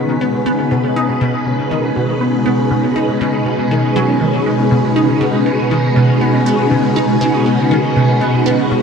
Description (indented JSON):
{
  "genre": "ambient, sequencer-driven space music",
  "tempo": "120 BPM",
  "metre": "4/4",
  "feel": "straight",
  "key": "unclear",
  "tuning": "A4 = 444 Hz",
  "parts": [
    { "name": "phased string machine", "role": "sustained chords", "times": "0.0-8.8 s", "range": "B2 to B4", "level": "-15 LUFS", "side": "equal", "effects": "ensemble chorus, phaser" },
    { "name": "concert harp", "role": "arpeggios", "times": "0.0-8.8 s", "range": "C#3 to C#5", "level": "-20 LUFS", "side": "left 3 dB", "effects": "auto-pan, analog delay" },
    { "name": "resonant blip pluck", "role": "riff", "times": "0.0-8.8 s", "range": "B2 to D#4", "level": "-18 LUFS", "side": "right 1 dB", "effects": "phaser, lush chorus, analog delay" },
    { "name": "wind-like tuned noise texture", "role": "texture", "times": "0.0-8.8 s", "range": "B4", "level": "-26 LUFS", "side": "right 3 dB", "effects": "built-in reverb, analog chorus" }
  ],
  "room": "wet cathedral reverb, RT60 5.2 s",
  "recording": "dreamy mix soaked in reverb",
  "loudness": "-12 LUFS",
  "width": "side -6 dB against mid",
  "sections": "0.0-8.8 A section",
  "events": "none",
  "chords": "0.0 B6"
}